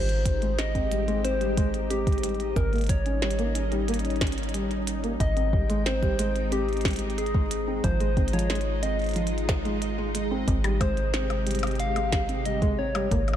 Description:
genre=IDM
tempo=91 BPM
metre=4/4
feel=straight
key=Ab major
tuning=A4 = 440 Hz
part: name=soft struck synth lead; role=melody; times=0.0-13.4 s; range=G4 to F5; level=-31 LUFS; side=left 1 dB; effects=chorus, digital delay
part: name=soft string machine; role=sustained chords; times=0.0-13.4 s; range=C3 to G5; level=-33 LUFS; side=left 1 dB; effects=ensemble chorus
part: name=felt-muted upright piano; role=arpeggios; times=0.0-13.2 s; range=F3 to Db4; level=-32 LUFS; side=right 1 dB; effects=low-pass filter, tape echo
part: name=metallic FM bass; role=bass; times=0.0-13.4 s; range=Ab1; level=-29 LUFS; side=equal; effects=none
part: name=bubbling stepped-filter texture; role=texture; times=0.0-13.4 s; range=Eb4 to Eb5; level=-39 LUFS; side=left 3 dB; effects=chorus, built-in reverb
part: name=glitchy drum kit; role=drums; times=0.1-13.4 s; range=hi-hat, percussion blips, snare drum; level=-33 LUFS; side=equal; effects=none
part: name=electronic kick drum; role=drums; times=0.3-13.2 s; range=none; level=-26 LUFS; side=equal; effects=none
room=light reverb, digital ambience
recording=dark, warm production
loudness=-24 LUFS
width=side -10 dB against mid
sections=0.0-13.4 A section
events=none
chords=0.0 Abmaj7; 2.6 Eb7/Ab; 5.2 Abmaj7; 7.8 Fm7/Ab; 10.5 Abmaj7

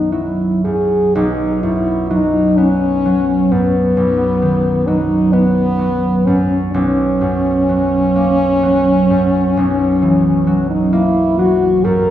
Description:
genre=classical, romantic duo for French horn and harp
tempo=38-45 BPM (dotted quarters)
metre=12/8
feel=rubato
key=B major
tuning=A4 = 440 Hz
part: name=mellow French horn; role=melody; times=0.0-12.1 s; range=B3 to A#4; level=-15 LUFS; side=left 1 dB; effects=none
part: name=concert harp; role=accompaniment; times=0.0-12.1 s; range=B1 to B3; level=-16 LUFS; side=right 2 dB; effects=none
room=wet recital hall reverb, RT60 1.5 s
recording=recorded in a church or concert hall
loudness=-12 LUFS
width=side -11 dB against mid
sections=0.0-1.1 A section; 1.1-12.1 A section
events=none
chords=0.0 B; 6.7 F#7/B

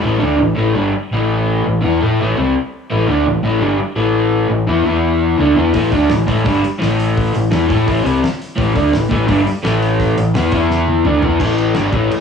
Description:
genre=garage rock duo or trio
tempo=169 BPM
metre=4/4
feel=straight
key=unclear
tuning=A4 = 441 Hz
part: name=crunchy overdriven guitar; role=riff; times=0.0-12.1 s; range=G2 to A4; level=-14 LUFS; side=left 1 dB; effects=none
part: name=hollow-body short-scale fingered electric bass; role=bass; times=0.0-12.2 s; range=G1 to A2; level=-19 LUFS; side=equal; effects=none
part: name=cloth-damped thuddy drum kit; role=drums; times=5.7-12.2 s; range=crash cymbal, hi-hat, kick drum, snare drum, toms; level=-22 LUFS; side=equal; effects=cassette tape
room=light reverb, small room ambience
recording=home recording on cassette, studio ambience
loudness=-13 LUFS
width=side -6 dB against mid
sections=0.0-11.4 A section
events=drum fill 10.7-11.4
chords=0.0 A5; 4.9 E5; 5.4 A5; 10.5 E5; 11.1 A5

